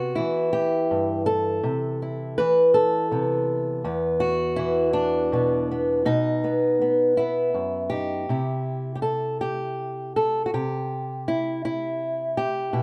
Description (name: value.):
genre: folk, solo fingerstyle acoustic guitar.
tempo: 54 BPM (dotted quarters).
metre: 6/8.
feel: straight.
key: unclear.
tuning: A4 = 439 Hz.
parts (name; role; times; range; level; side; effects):
fingerpicked old ladder-braced acoustic guitar; solo; 0.0-12.8 s; E2 to B4; -24 LUFS; equal; none.
room: moderate studio ambience, RT60 0.5 s.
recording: dark, warm production.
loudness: -24 LUFS.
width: mono.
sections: 0.0-8.3 A section; 8.3-12.8 B section.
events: none.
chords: 0.0 Cmaj7 (rootless); 1.6 Amadd9/C; 3.9 E5; 6.1 B; 8.3 C.